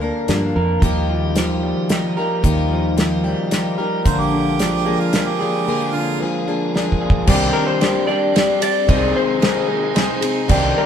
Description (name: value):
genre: folk rock and heartland rock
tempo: 112 BPM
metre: 3/4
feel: straight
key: unclear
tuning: A4 = 439 Hz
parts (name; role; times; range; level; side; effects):
- picked plugged-in twelve-string acoustic guitar; accompaniment; 0.0-10.9 s; Bb2 to Bb4; -22 LUFS; left 5 dB; none
- electric guitar through a small old amp; riff; 0.0-10.9 s; Bb2 to Bb4; -22 LUFS; right 2 dB; spring reverb
- fingered electric bass; bass; 0.0-10.7 s; Bb1 to G2; -22 LUFS; right 1 dB; none
- damped 70s drum kit; drums; 0.3-10.6 s; crash cymbal, hi-hat, kick drum, ride cymbal, snare drum; -19 LUFS; equal; none
- tonewheel organ; sustained chords; 0.8-10.9 s; G3 to D5; -30 LUFS; right 2 dB; slow rotary speaker
- clear harmonica; second line; 4.1-6.2 s; F4 to C5; -23 LUFS; right 9 dB; none
- bright grand piano; accompaniment; 7.3-10.9 s; D4 to D5; -28 LUFS; right 2 dB; none
- electric slide guitar; melody; 7.5-10.9 s; Bb4 to D5; -19 LUFS; left 2 dB; none
room: moderate stone room reverb, RT60 1.1 s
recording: band playing live in one room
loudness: -16 LUFS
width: side -8 dB against mid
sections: 0.0-7.3 A section; 7.3-10.9 B section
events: drum fill 6.7-7.3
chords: 0.0 Bb/D; 0.8 Ebadd9; 4.1 Bb7; 7.3 Cmadd9; 8.9 Ab/C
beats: 0.29 | 0.82 1.36 1.90 | 2.44 2.98 3.52 | 4.05 4.59 5.13 | 5.67 6.21 6.74 | 7.28 7.82 8.36 | 8.89 9.43 9.96 | 10.50